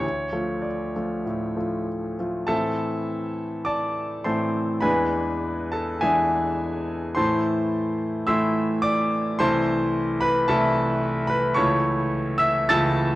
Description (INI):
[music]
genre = classical, romantic character piece for solo piano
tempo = 93-115 BPM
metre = 4/4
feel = rubato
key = A minor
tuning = A4 = 439 Hz
[part]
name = bright grand piano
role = solo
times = 0.0-13.2 s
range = C2 to A6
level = -21 LUFS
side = equal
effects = none
[sound]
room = moderate recital hall reverb, RT60 1.3 s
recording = worn, warbling old tape, cassette tape, warbly pitch drift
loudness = -21 LUFS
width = side -17 dB against mid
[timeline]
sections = 0.0-2.5 A section; 2.5-13.2 B section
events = none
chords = 0.0 Dm; 2.5 Am; 4.8 E7; 7.2 Am; 9.4 Am/C; 11.6 A/C#